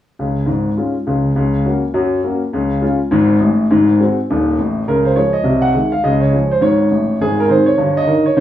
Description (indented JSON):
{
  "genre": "jazz, stride piano",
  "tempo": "205 BPM",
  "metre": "4/4",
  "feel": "swing 61% on 8ths",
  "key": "Db major",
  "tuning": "A4 = 440 Hz",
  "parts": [
    { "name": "warm grand piano", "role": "solo", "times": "0.2-8.4 s", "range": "Eb1 to Gb5", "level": "-13 LUFS", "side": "equal", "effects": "none" }
  ],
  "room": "moderate studio ambience, RT60 0.4 s",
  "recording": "studio reverb",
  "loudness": "-13 LUFS",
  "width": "side -12 dB against mid",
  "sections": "0.2-4.9 A section; 4.9-8.4 B section",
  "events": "none",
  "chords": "0.2 Db; 1.4 Gb/Db; 2.5 Db; 3.7 Ab7; 4.9 Db; 5.5 Ab/C; 6.0 Db; 7.2 Ab; 7.8 Eb/G",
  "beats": "| 0.17 0.47 0.76 1.06 | 1.35 1.64 1.94 2.23 | 2.52 2.82 3.11 3.41 | 3.70 3.99 4.29 4.58 | 4.87 5.16 5.46 5.75 | 6.04 6.33 6.63 6.92 | 7.21 7.50 7.80 8.09 | 8.38"
}